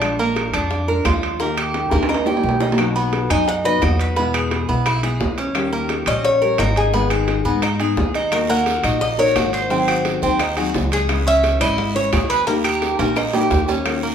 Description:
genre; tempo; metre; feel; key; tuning
latin, Cuban son and guajira; 173 BPM; 4/4; straight; unclear; A4 = 437 Hz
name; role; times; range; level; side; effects
nylon-string guitar; accompaniment; 0.0-14.1 s; B2 to G#4; -24 LUFS; left 5 dB; none
Cuban tres; arpeggios; 0.0-14.1 s; A#3 to C#5; -22 LUFS; right 3 dB; none
upright bass; bass; 0.0-14.1 s; G#1 to G#2; -23 LUFS; equal; none
bongos; percussion; 0.0-14.0 s; none; -29 LUFS; left 4 dB; none
claves; percussion; 0.0-14.0 s; none; -31 LUFS; left 5 dB; none
timbales; percussion; 0.0-14.0 s; none; -24 LUFS; right 3 dB; none
Cuban tres; melody; 3.3-13.0 s; G#4 to G#5; -20 LUFS; left 1 dB; none
guiro; percussion; 8.3-14.1 s; none; -34 LUFS; right 6 dB; none
room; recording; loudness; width
moderate large studio reverb, RT60 1.0 s; band playing live in one room; -16 LUFS; side -8 dB against mid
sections
0.0-14.1 A section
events
drum fill 1.9-2.8, 13.0-13.9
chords
0.0 A#7; 1.4 D#; 2.8 B; 4.2 E; 5.6 D#7; 6.9 G#m; 8.3 D#m; 9.7 G#7; 11.1 C#m; 12.5 D#

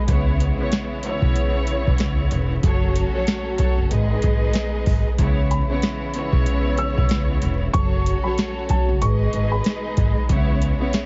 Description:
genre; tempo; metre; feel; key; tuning
hip hop, boom-bap hip-hop; 94 BPM; 4/4; swing 58% on 16ths; C# minor; A4 = 445 Hz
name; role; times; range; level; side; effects
dark upright piano; melody; 0.0, 5.5-10.3 s; A5 to E6; -32 LUFS; equal; high-pass filter, low-pass filter, tape echo, plate reverb
bright studio string section; sustained chords; 0.0-11.1 s; A2 to G#4; -36 LUFS; equal; high-pass filter, low-pass filter
muted studio string section; accompaniment; 0.1-11.1 s; C#3 to D#5; -28 LUFS; equal; cassette tape, high-pass filter, low-pass filter, plate reverb
upright bass; bass; 0.1-10.7 s; E1 to C#2; -25 LUFS; equal; none
booming analog drum machine; drums; 0.1-11.1 s; hi-hat, kick drum, snare drum; -24 LUFS; equal; overdrive
room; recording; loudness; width
light reverb; heavily compressed radio sound, multiband compression, vinyl crackle, nothing above 7.6 kHz; -21 LUFS; mono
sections
0.0-11.1 A section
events
none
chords
0.1 C#m7; 2.6 F#m; 3.9 G#m; 5.2 C#m7; 7.7 F#m; 9.0 G#m; 10.3 C#m7

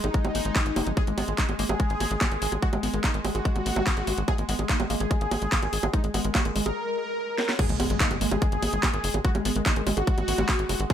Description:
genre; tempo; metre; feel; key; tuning
psychedelic trance; 145 BPM; 4/4; straight; unclear; A4 = 441 Hz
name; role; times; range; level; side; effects
wide unison lead; melody; 0.0-10.9 s; G#3 to A#4; -30 LUFS; left 1 dB; phaser, sidechain pumping, digital delay
pulsing gated texture; sustained chords; 0.0-10.9 s; G#3; -37 LUFS; equal; chorus, built-in reverb, sidechain pumping
woody wave-folded pluck; riff; 0.0-10.9 s; F#3 to A#4; -34 LUFS; equal; chorus, auto-pan, sidechain pumping, digital delay
tight sequencer bass; bass; 0.0-10.9 s; F#1 to G#1; -29 LUFS; equal; none
drum and bass drum kit; drums; 0.0-10.9 s; bongos, crash cymbal, handclaps, hi-hat, snare drum; -29 LUFS; right 1 dB; overdrive
electronic kick drum; drums; 0.1-10.9 s; none; -24 LUFS; equal; overdrive
impact; sound effects; 7.6-9.2 s; none; -36 LUFS; equal; none
room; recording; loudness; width
little or no reverb; none; -23 LUFS; side -10 dB against mid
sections
0.0-7.6 A section; 7.6-10.9 B section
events
break 6.8-7.6; drum fill 7.4; drop 7.6-10.9; impact 7.6-9.2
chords
0.0 G#5

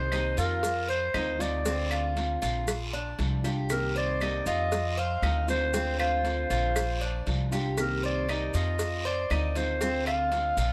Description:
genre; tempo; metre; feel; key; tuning
latin, Cuban son and guajira; 118 BPM; 4/4; straight; C minor; A4 = 441 Hz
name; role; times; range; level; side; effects
growling clarinet; melody; 0.0-10.7 s; Bb4 to F5; -33 LUFS; equal; none
nylon-string guitar; accompaniment; 0.0-10.7 s; C3 to G4; -38 LUFS; equal; none
Cuban tres; arpeggios; 0.0-10.7 s; C4 to C5; -35 LUFS; equal; none
upright bass; bass; 0.0-10.7 s; Bb1 to F2; -33 LUFS; equal; none
claves; percussion; 0.1-10.3 s; none; -38 LUFS; equal; none
cowbell; percussion; 0.1-10.7 s; none; -40 LUFS; equal; none
guiro; percussion; 0.1-10.7 s; none; -43 LUFS; equal; none
maracas; percussion; 0.1-10.7 s; none; -46 LUFS; equal; none
room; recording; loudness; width
light reverb; none; -28 LUFS; mono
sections
0.0-10.7 A section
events
none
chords
0.0 Cm7; 0.6 Fm7; 1.7 Dm7b5; 2.7 Bb7; 3.7 Cm7; 4.7 Fm7; 5.7 Dm7b5; 6.8 Bb7; 7.8 Cm7; 8.8 Fm7; 9.8 Dm7b5

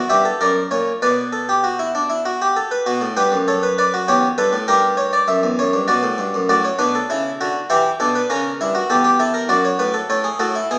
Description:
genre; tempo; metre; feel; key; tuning
classical, baroque-style 3-part fugue for harpsichord; 99 BPM; 3/4; straight; B minor, D major from 6.5 s; A4 = 438 Hz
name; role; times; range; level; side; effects
harpsichord; solo; 0.0-10.8 s; E2 to E5; -15 LUFS; equal; none
room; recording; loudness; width
wet recital hall reverb, RT60 1.4 s; recorded in a church or concert hall, small speaker sound; -15 LUFS; side -25 dB against mid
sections
0.0-2.9 A section; 2.9-6.5 B section; 6.5-10.8 C section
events
none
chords
0.4 F#; 1.0 Bm; 4.1 C#m7b5/E; 4.7 A#dim7/G; 5.9 Bm; 6.5 D/A; 7.7 Em7; 8.3 C#dim7; 9.5 D/F#; 10.1 A

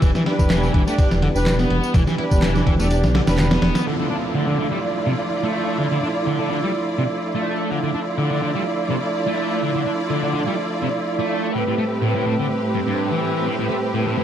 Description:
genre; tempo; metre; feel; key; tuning
breakbeat, breaks; 125 BPM; 4/4; swing 54% on 16ths; D dorian; A4 = 439 Hz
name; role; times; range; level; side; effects
tonewheel organ; sustained chords; 0.0-14.2 s; E3 to E5; -28 LUFS; equal; overdrive, chorus vibrato, slow rotary speaker, vintage 12-bit sampler grit, sidechain pumping, low-pass filter
distorted electric guitar; riff; 0.0-14.2 s; G2 to E4; -23 LUFS; equal; distortion, tube saturation, vintage 12-bit sampler grit, low-pass filter
dark detuned saw bass; bass; 0.0-3.7 s; E1 to B1; -21 LUFS; equal; tube saturation
dusty soul sampler-style drum kit; drums; 0.0-3.9 s; hi-hat, kick drum, ride cymbal, snare drum; -19 LUFS; equal; none
electronic tambourine and handclaps; drums; 0.0-3.8 s; none; -34 LUFS; right 1 dB; overdrive, low-pass filter on perc, low-pass filter on snare
clear studio string section; stabs; 0.3-14.2 s; A2 to D5; -24 LUFS; right 2 dB; ping-pong delay
downlifter; sound effects; 3.9-7.7 s; none; -31 LUFS; left 1 dB; none
room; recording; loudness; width
moderate studio reverb, RT60 0.5 s; dark, warm production, vinyl crackle; -18 LUFS; side -10 dB against mid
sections
0.0-3.9 A section; 3.9-14.2 B section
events
none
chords
0.0 Em7; 3.9 Dmadd9; 11.5 Am7

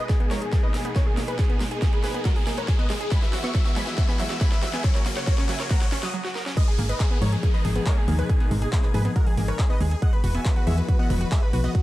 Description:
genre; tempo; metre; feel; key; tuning
uplifting trance; 139 BPM; 4/4; straight; G# minor; A4 = 440 Hz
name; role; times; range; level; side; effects
big supersaw lead; melody; 0.0-11.8 s; F#4 to D#6; -33 LUFS; equal; phaser, sidechain pumping, low-pass filter, tape echo
plucky unison lead; second line; 0.0-11.8 s; F#4 to D#6; -37 LUFS; left 1 dB; sidechain pumping, tape echo
warm studio string section; sustained chords; 0.0-11.8 s; B2 to F#4; -34 LUFS; left 1 dB; sidechain pumping
solid FM bass; bass; 0.0-11.7 s; E1 to G#2; -25 LUFS; equal; sidechain pumping, high-pass filter
riser and downlifter; sound effects; 0.0-10.0 s; none; -36 LUFS; left 2 dB; none
analog pluck; arpeggios; 0.1-11.8 s; F#3 to F#5; -34 LUFS; right 3 dB; chorus, sidechain pumping, tape echo
big-room dance drum kit; drums; 0.1-11.8 s; congas, crash cymbal, handclaps, hi-hat, snare drum; -32 LUFS; left 2 dB; high-pass filter on snare, sidechain pumping on hats, high-pass filter on hats, sidechain pumping on perc, high-pass filter on perc, sidechain pumping on cymbals, high-pass filter on cymbals, high-pass filter on room
electronic kick drum; drums; 0.1-11.8 s; none; -22 LUFS; equal; none
room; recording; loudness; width
little or no reverb; dark, warm production; -21 LUFS; side -16 dB against mid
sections
0.0-6.6 A section; 6.6-11.8 B section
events
build-up 0.0-6.6; drum fill 0.0-6.1, 6.2-6.6; riser 0.0-6.1; filter sweep on supersaw synth 0.0-6.6; filter sweep on synth pluck 0.0-6.6; filter sweep on digital synth lead 0.0-6.6; break 6.1-6.6; drop 6.6-11.8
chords
0.0 G#madd9; 3.1 Eadd9; 4.8 F#; 6.6 G#madd9; 10.0 Eadd9

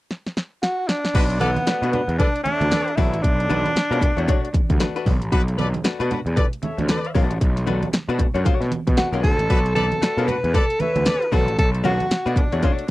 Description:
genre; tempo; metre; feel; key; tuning
funk; 115 BPM; 4/4; swing 60% on 16ths; B minor; A4 = 440 Hz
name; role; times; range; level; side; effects
house drum kit; drums; 0.1-12.9 s; crash cymbal, hi-hat, kick drum, snare drum; -20 LUFS; equal; none
breathy tenor saxophone; melody; 0.6-4.8, 9.0-12.9 s; B3 to B4; -22 LUFS; equal; slapback echo
warm horn section; second line; 1.1-11.3 s; D4 to E5; -26 LUFS; left 2 dB; none
fuzz picked electric bass; bass; 1.1-12.9 s; A1 to B2; -24 LUFS; equal; overdrive
congas; percussion; 1.4-12.8 s; none; -29 LUFS; right 4 dB; none
archtop guitar, miked and amplified; accompaniment; 1.7-12.8 s; A3 to C#5; -26 LUFS; left 6 dB; none
room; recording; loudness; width
little or no reverb; dry, close 1970s-style studio recording; -18 LUFS; side -18 dB against mid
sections
0.0-1.1 A section; 1.1-12.9 B section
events
drum fill 0.1-1.1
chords
0.0 N.C.; 1.1 Bm7

